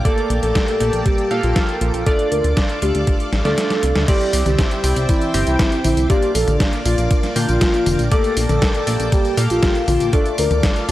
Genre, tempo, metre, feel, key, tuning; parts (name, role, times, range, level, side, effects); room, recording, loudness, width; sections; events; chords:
italo disco; 119 BPM; 4/4; straight; A4 = 438 Hz
string machine, full ensemble; sustained chords; 0.0-10.9 s; Bb3 to D6; -28 LUFS; equal; ensemble chorus
chorused polysynth; stabs; 0.0-10.9 s; A3 to G5; -23 LUFS; right 1 dB
chorused synth bass; bass; 0.0-10.9 s; F1 to Bb2; -19 LUFS; equal; tube saturation
soft octave-layered synth lead; melody; 0.1-10.9 s; E4 to Bb4; -21 LUFS; equal; chorus, phaser, tape echo
detuned 8-bit digital drum machine; drums; 0.1-10.9 s; crash cymbal, hi-hat, snare drum, tambourine, toms; -23 LUFS; left 1 dB
electronic kick drum; drums; 0.1-10.7 s; -18 LUFS; equal
light reverb, digital ambience; dry, gritty hardware recording; -15 LUFS; side -15 dB against mid
0.0-4.1 A section; 4.1-10.9 B section
drum fill 3.3-4.1; kick drops out 3.6-4.1
0.0 Gmadd9/Bb; 2.1 Dm; 4.1 Cadd9; 6.1 Bb; 8.1 Gmadd9/Bb; 10.1 Dm